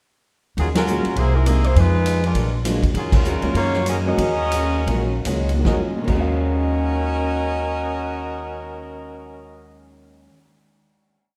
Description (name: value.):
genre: jazz, big band swing.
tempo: 141-203 BPM.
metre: 4/4.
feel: swing 61% on 8ths.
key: Eb minor.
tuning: A4 = 438 Hz.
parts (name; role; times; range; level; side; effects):
clear saxophone section; melody; 0.6-9.8 s; Gb3 to Eb5; -27 LUFS; equal; none.
picked steel-string acoustic guitar; accompaniment; 0.6-10.4 s; Bb2 to Ab4; -32 LUFS; equal; none.
upright bass; bass; 0.6-10.3 s; Bb1 to Gb2; -24 LUFS; equal; none.
swinging big-band drum kit; drums; 0.6-6.2 s; crash cymbal, hi-hat, kick drum, ride cymbal, snare drum; -27 LUFS; equal; none.
clear upright piano; accompaniment; 0.9-10.4 s; Eb2 to F5; -30 LUFS; equal; none.
room: moderate concert hall reverb, RT60 2.1 s.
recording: none.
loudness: -20 LUFS.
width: mono.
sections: 0.6-5.7 A section; 5.7-9.1 final chord.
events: band accent 0.7, 3.1; slowing down 2.9-5.7.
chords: 0.6 Ebm11; 1.2 C7alt; 1.8 Fm7b5; 2.4 Bb7b13; 2.9 Ebm11.